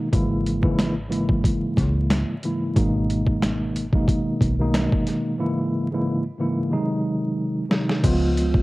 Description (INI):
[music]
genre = hip hop, boom-bap hip-hop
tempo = 91 BPM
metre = 4/4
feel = swing 56% on 16ths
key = G# minor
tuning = A4 = 443 Hz
[part]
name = mellow tine electric piano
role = accompaniment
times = 0.0-8.6 s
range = G#2 to E#4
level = -22 LUFS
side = equal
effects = medium stereo tremolo, high-pass filter, low-pass filter, cassette tape
[part]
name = deep dub fingered electric bass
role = bass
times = 0.1-8.6 s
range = G#1 to C#2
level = -25 LUFS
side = equal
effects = transformer saturation
[part]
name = boom bap sampler-style drum kit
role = drums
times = 0.1-8.6 s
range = crash cymbal, hi-hat, kick drum, snare drum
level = -22 LUFS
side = equal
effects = overdrive
[sound]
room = light reverb, digital ambience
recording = home recording on cassette, vinyl crackle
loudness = -20 LUFS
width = side -20 dB against mid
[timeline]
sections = 0.0-8.0 A section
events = break 5.4-8.0; drum fill 6.7-8.0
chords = 0.1 A#m7b5/G#; 2.8 G#madd9; 5.4 A#m7b5/G#; 6.7 G#7; 8.0 C#7